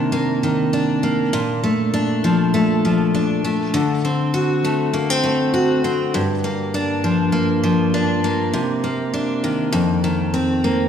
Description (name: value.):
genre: indie pop.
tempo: 100 BPM.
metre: 4/4.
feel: swing 55% on 16ths.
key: G minor.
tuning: A4 = 438 Hz.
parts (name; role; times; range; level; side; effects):
picked steel-string acoustic guitar; solo; 0.0-10.9 s; F2 to F#4; -17 LUFS; left 1 dB; vibrato effect.
room: wet scoring stage reverb, RT60 1.8 s.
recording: recorded in a church or concert hall.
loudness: -17 LUFS.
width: side -8 dB against mid.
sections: 0.0-10.9 A section.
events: none.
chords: 0.0 Cm9; 1.3 Bbmaj7; 3.7 D7; 6.1 Gm7; 8.5 Cm9; 9.7 F7sus4.